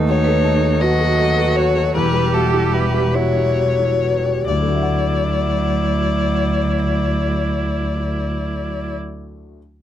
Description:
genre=neoclassical piano and strings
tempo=44-56 BPM (dotted quarters)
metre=6/8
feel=rubato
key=D major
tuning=A4 = 440 Hz
part: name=muted cello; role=second line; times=0.0-8.9 s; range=F#3 to G4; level=-24 LUFS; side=right 6 dB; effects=none
part: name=dark upright piano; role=accompaniment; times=0.0-9.6 s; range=D2 to F#5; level=-25 LUFS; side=left 3 dB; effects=none
part: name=muted viola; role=accompaniment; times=0.0-8.9 s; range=F#3 to E4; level=-26 LUFS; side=right 3 dB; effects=none
part: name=muted double bass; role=bass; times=0.0-8.9 s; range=E1 to D#2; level=-21 LUFS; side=equal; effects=none
part: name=muted violin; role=melody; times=0.1-9.0 s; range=A4 to D#5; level=-22 LUFS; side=left 7 dB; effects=none
part: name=marimba with medium mallets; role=arpeggios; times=0.1-4.4 s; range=E4 to A5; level=-27 LUFS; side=right 10 dB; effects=slapback echo
room=little or no reverb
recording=dry, close 1970s-style studio recording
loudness=-16 LUFS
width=side -11 dB against mid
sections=0.0-4.5 A section; 4.5-9.6 B section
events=slowing down 0.0-4.5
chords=0.0 B7/D#; 1.9 Emadd9; 4.5 Dadd9

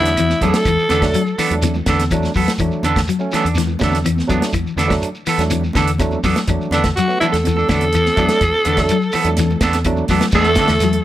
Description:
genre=afrobeat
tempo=124 BPM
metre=4/4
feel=straight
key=unclear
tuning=A4 = 440 Hz
part: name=raspy alto saxophone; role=melody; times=0.0-1.4, 6.7-11.0 s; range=D4 to A4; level=-18 LUFS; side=right 1 dB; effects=tape echo
part: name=barky tine electric piano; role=accompaniment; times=0.0-10.0 s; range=F#3 to D4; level=-24 LUFS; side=right 4 dB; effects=none
part: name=clean electric guitar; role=arpeggios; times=0.0-11.0 s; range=D3 to A3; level=-22 LUFS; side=left 7 dB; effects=spring reverb
part: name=electric guitar at the edge of break-up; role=stabs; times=0.0-10.7 s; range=B3 to A4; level=-21 LUFS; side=right 5 dB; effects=none
part: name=deep dub fingered electric bass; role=bass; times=0.0-11.0 s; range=E2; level=-21 LUFS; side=equal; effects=none
part: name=warm soul drum kit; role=drums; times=0.1-11.0 s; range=crash cymbal, hi-hat, kick drum, snare drum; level=-22 LUFS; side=equal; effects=none
part: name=shekere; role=percussion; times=0.1-10.9 s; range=none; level=-27 LUFS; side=equal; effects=none
part: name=claves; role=percussion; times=0.2-10.8 s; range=none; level=-34 LUFS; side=left 4 dB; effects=none
part: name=congas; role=percussion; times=0.2-10.9 s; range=none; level=-27 LUFS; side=right 3 dB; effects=none
part: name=clear trombone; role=second line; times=10.3-11.0 s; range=A3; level=-24 LUFS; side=right 5 dB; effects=none
room=light reverb, small room ambience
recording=none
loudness=-14 LUFS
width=side -13 dB against mid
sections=0.0-10.3 A section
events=drum fill 9.7-10.3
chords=0.0 E7sus4

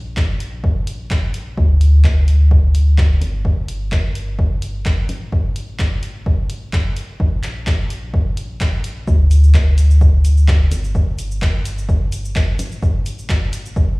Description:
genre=piano house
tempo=128 BPM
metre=4/4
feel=swing 54% on 16ths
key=unclear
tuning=A4 = 439 Hz
part: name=organ-like FM bass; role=bass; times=0.0-14.0 s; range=G1 to D2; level=-16 LUFS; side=equal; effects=sidechain pumping
part: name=electronic kick drum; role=drums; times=0.2-13.9 s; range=none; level=-16 LUFS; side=equal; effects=none
part: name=punchy analog drum machine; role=drums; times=0.2-13.9 s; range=handclaps, hi-hat, shaker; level=-29 LUFS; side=equal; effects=none
room=little or no reverb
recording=played on a big sound system in a bare room, stone room reverb, small room ambience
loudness=-14 LUFS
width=side -25 dB against mid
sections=0.0-9.1 A section; 9.1-14.0 B section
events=drop 9.1-14.0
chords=none

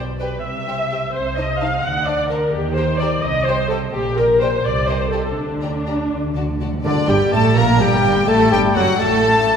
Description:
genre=quick classical-period movement for symphony orchestra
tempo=84 BPM (dotted quarters)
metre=6/8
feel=rubato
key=G minor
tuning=A4 = 444 Hz
part: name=clear studio violin section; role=melody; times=0.0-9.6 s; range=D5 to Bb5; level=-26 LUFS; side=left 3 dB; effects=none
part: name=dark studio violin section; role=second line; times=0.0-9.6 s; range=D4 to Eb5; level=-26 LUFS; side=left 2 dB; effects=none
part: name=dark symphonic viola section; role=accompaniment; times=0.0-9.6 s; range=D3 to F#5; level=-20 LUFS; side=equal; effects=none
part: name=dark studio double bass section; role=bass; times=0.0-9.6 s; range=F#1 to Eb2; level=-24 LUFS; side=right 2 dB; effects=none
part: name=warm studio cello section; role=bass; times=0.0-9.6 s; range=D2 to Eb3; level=-24 LUFS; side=right 2 dB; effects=none
part: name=timpani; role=percussion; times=6.1-7.5 s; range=G2 to D3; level=-29 LUFS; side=equal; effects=none
part: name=mellow flute section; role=second line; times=6.8-9.6 s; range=D5 to Bb5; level=-23 LUFS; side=left 1 dB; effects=none
part: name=clear bassoon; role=accompaniment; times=6.8-9.6 s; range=D3 to Bb3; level=-25 LUFS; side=equal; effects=none
part: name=mellow French horn section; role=sustained chords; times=6.8-9.6 s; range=D3 to Bb3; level=-23 LUFS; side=left 3 dB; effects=none
part: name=warm clarinet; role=second line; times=6.9-9.6 s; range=D4 to Bb4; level=-26 LUFS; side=left 3 dB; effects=none
part: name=warm oboe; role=second line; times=6.9-9.6 s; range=D5 to Bb5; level=-24 LUFS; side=right 1 dB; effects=none
room=wet concert hall reverb, RT60 2.0 s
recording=recorded in a church or concert hall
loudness=-16 LUFS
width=side -7 dB against mid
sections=0.0-6.8 A section; 6.8-9.6 B section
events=timpani fill 6.1-6.8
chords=0.4 C; 1.2 Adim/C; 1.8 D5; 2.5 Eb; 3.2 C5; 3.9 Gm/Bb; 4.6 Am7b5/C; 5.4 Gm/D; 6.8 G5; 7.6 Gm; 8.3 F#m

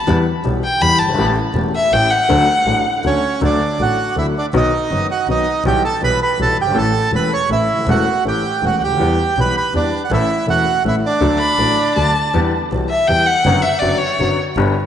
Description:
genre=tango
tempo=162 BPM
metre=3/4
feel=rubato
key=D major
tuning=A4 = 441 Hz
part: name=warm violin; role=second line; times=0.0-3.0, 11.4-14.4 s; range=C#5 to B5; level=-16 LUFS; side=left 2 dB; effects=diffuse ambient delay
part: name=warm baby grand piano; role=accompaniment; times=0.1-14.7 s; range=C#1 to A4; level=-19 LUFS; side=left 3 dB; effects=none
part: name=dark double bass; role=bass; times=0.1-14.7 s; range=E1 to E2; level=-22 LUFS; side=right 1 dB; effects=none
part: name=bandoneon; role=melody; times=3.1-12.1 s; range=C#4 to C#6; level=-17 LUFS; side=right 4 dB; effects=diffuse ambient delay
room=wet plate reverb, RT60 3.2 s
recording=dreamy mix soaked in reverb, nothing above 10.4 kHz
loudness=-14 LUFS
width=side -9 dB against mid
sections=0.0-3.4 A section; 3.4-12.3 B section; 12.3-14.9 A section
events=violin solo 0.0-3.4, 12.3-14.9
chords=0.1 Em; 1.2 A7; 2.3 D; 4.5 B; 5.6 Em/B; 6.7 A; 9.0 Em; 10.1 A; 11.2 D; 12.3 Em; 13.5 Bm/F#

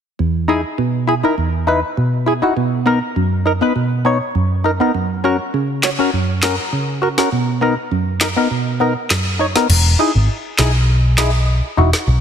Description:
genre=dancehall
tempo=101 BPM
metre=4/4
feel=straight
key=unclear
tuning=A4 = 440 Hz
part: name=percussive organ stab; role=accompaniment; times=0.2-11.9 s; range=E2 to C#5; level=-16 LUFS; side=equal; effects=chorus, phaser
part: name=afro-pop drum kit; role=drums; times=5.8-12.1 s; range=crash cymbal, handclaps, snare drum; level=-20 LUFS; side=left 1 dB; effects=overdrive
part: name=hollow-body short-scale picked electric bass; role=bass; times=9.7-12.2 s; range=E1 to B1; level=-13 LUFS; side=equal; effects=none
room=light reverb, digital ambience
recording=dense, heavily limited modern master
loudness=-14 LUFS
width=side -8 dB against mid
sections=0.2-9.7 A section; 9.7-12.2 B section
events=kick muted 9.7-12.2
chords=0.2 Emaj7; 2.6 Bmaj7; 4.9 F#; 7.3 Bmaj7; 9.7 Emaj7

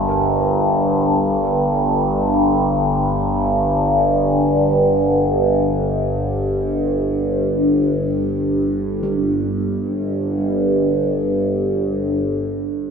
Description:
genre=dark ambient drone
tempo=free time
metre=none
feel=none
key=G minor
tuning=A4 = 440 Hz
part: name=gamelan-type bossed gongs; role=arpeggios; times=0.0-12.2 s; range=C2 to Bb4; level=-32 LUFS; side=right 3 dB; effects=none
part: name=overtone-sweeping drone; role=drone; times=0.0-12.2 s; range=G1 to G2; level=-16 LUFS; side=equal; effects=chorus, built-in reverb, phaser
room=wet cathedral reverb, RT60 5.5 s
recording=none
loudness=-16 LUFS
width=side -6 dB against mid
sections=0.0-9.0 A section; 9.0-12.6 B section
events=none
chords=0.0 Gm; 9.0 N.C.

